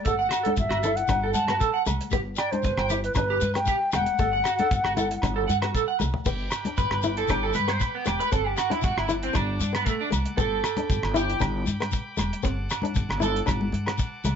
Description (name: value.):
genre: highlife guitar band.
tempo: 116 BPM.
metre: 4/4.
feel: straight.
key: G major.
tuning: A4 = 440 Hz.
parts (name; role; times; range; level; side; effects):
wooden flute; melody; 0.0-5.7 s; B4 to A5; -26 LUFS; left 2 dB; slapback echo.
flamenco guitar; accompaniment; 0.0-14.4 s; A3 to E4; -32 LUFS; left 6 dB; none.
electric guitar at the edge of break-up; arpeggios; 0.0-13.4 s; A3 to G5; -28 LUFS; right 5 dB; analog chorus, slapback echo.
upright bass; bass; 0.1-14.4 s; E1 to G2; -30 LUFS; equal; none.
damped 70s drum kit; drums; 0.1-14.4 s; crash cymbal, hi-hat, kick drum, rim click, toms; -29 LUFS; equal; none.
shekere; percussion; 0.1-14.4 s; none; -34 LUFS; left 7 dB; none.
agogo bells; percussion; 0.3-14.4 s; none; -35 LUFS; right 4 dB; none.
congas; percussion; 0.5-14.4 s; none; -33 LUFS; left 3 dB; none.
overdriven combo organ; sustained chords; 6.3-14.4 s; F#5 to D6; -39 LUFS; equal; none.
room: little or no reverb.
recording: nothing above 7.6 kHz.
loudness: -23 LUFS.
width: side -7 dB against mid.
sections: 0.0-6.3 A section; 6.3-14.4 B section.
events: drum fill 6.0; clean electric guitar solo 6.3-14.4.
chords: 0.1 D/G; 2.1 G; 4.2 D/G; 6.3 G; 8.3 D/G; 10.4 G; 12.4 D/G.